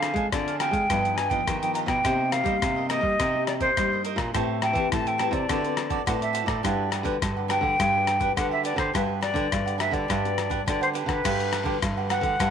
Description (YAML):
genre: samba and choro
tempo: 104 BPM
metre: 4/4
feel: straight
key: G major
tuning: A4 = 440 Hz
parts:
  - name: silver concert flute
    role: melody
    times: 0.0-12.5 s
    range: B4 to Bb5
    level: -26 LUFS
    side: left 1 dB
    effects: none
  - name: cavaquinho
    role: accompaniment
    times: 0.0-12.5 s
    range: D4 to A5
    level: -31 LUFS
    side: right 13 dB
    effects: none
  - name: nylon-string guitar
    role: accompaniment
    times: 0.0-12.5 s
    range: G2 to B4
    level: -33 LUFS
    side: left 14 dB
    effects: none
  - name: nylon-string guitar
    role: bass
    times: 0.0-12.5 s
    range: G2 to Ab3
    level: -29 LUFS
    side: right 1 dB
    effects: none
  - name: boom bap sampler-style drum kit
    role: drums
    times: 0.0-12.5 s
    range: crash cymbal, hi-hat, kick drum, rim click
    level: -30 LUFS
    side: left 3 dB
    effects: none
room: light reverb, small room reverb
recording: 1960s-style stereo with parts hard left and right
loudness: -22 LUFS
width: side -8 dB against mid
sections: 0.0-11.2 A section; 11.2-12.5 A section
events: none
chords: 0.0 Dm7b5; 0.9 Gaug7; 2.0 Cm7; 4.3 Am9; 5.5 D6; 6.6 Gmaj7